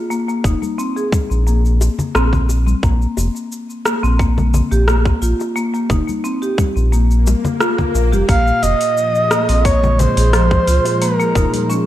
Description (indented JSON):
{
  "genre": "organic downtempo",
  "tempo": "88 BPM",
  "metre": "4/4",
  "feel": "straight",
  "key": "Bb dorian",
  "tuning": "A4 = 440 Hz",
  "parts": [
    { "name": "marimba with medium mallets", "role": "arpeggios", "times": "0.1-11.9 s", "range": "F3 to Ab4", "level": "-21 LUFS", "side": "left 1 dB", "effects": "low-pass filter, ping-pong delay" },
    { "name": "deep house drum kit", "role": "drums", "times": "0.1-11.8 s", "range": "hi-hat, rim click, shaker", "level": "-22 LUFS", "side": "equal", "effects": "overdrive" },
    { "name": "round analog bass", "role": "bass", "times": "0.4-11.5 s", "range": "F1 to Db2", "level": "-15 LUFS", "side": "equal", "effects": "none" },
    { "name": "electronic kick drum", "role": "drums", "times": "0.4-11.5 s", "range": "none", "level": "-18 LUFS", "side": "equal", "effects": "overdrive" },
    { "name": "bongos and congas", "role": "percussion", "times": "0.4-11.7 s", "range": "none", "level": "-24 LUFS", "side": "left 3 dB", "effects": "none" },
    { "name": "swell", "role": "sound effects", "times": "7.2-8.3 s", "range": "none", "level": "-25 LUFS", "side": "left 6 dB", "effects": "none" },
    { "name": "breathy flute-like synth lead", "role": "melody", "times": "8.3-11.7 s", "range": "Bb4 to F5", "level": "-16 LUFS", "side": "right 1 dB", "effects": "chorus, digital delay" },
    { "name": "warm analog pad", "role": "sustained chords", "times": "8.3-11.9 s", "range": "Bb2 to Ab4", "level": "-22 LUFS", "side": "right 1 dB", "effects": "chorus, vintage 12-bit sampler grit, sidechain pumping" }
  ],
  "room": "light reverb, digital ambience",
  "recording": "none",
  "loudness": "-13 LUFS",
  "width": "side -13 dB against mid",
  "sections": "0.0-11.9 A section",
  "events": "filter sweep on marimba 0.0-11.9; swell 7.2-8.3",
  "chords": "0.0 N.C.; 8.3 Bb7(no3)"
}